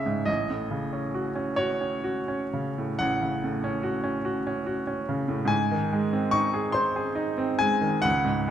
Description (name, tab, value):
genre	classical, romantic nocturne for solo piano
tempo	41-49 BPM (dotted quarters)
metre	12/8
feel	rubato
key	unclear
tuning	A4 = 440 Hz
part	bright baby grand piano	solo	0.0-8.5 s	A1 to C#6	-24 LUFS	equal	none
room	wet recital hall reverb, RT60 1.4 s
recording	dark, warm production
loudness	-24 LUFS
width	side -10 dB against mid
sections	0.0-8.5 A section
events	none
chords	0.3 F#m/A; 5.5 G#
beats	| 0.28 1.58 3.00 4.26 | 5.52 6.75 8.05